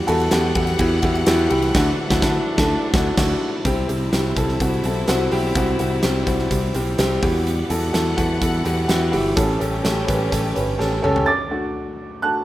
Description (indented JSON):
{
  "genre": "piano-driven pop",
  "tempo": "126 BPM",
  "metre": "4/4",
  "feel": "straight",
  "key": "unclear",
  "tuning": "A4 = 440 Hz",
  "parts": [
    { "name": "clear upright piano", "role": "accompaniment", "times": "0.0-12.4 s", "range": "A2 to A6", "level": "-21 LUFS", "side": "equal", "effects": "none" },
    { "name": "clear studio string section", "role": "sustained chords", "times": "0.0-11.3 s", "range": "E3 to F#5", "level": "-28 LUFS", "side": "left 1 dB", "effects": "none" },
    { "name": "modern bright picked electric bass", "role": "bass", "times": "0.1-11.2 s", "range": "G1 to E2", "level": "-23 LUFS", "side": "equal", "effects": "none" },
    { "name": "huge arena drum kit", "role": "drums", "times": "0.1-11.3 s", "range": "crash cymbal, hi-hat, kick drum, ride cymbal, snare drum, toms", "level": "-24 LUFS", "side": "equal", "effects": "none" },
    { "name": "group handclap", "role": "percussion", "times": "0.1-1.4 s", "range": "none", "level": "-36 LUFS", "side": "left 3 dB", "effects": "none" }
  ],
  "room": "moderate plate reverb, RT60 1.4 s, studio reverb",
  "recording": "rough home demo mix",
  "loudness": "-17 LUFS",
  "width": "side -15 dB against mid",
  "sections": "0.0-3.6 A section; 3.6-11.3 B section; 11.3-12.4 A section",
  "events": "band accent 1.7-3.6; drum fill 10.8-11.3; upright piano solo 11.3-12.4",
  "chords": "0.0 Emadd9; 1.7 Dadd9; 3.6 C; 7.2 Emadd9; 9.4 A7; 11.3 D"
}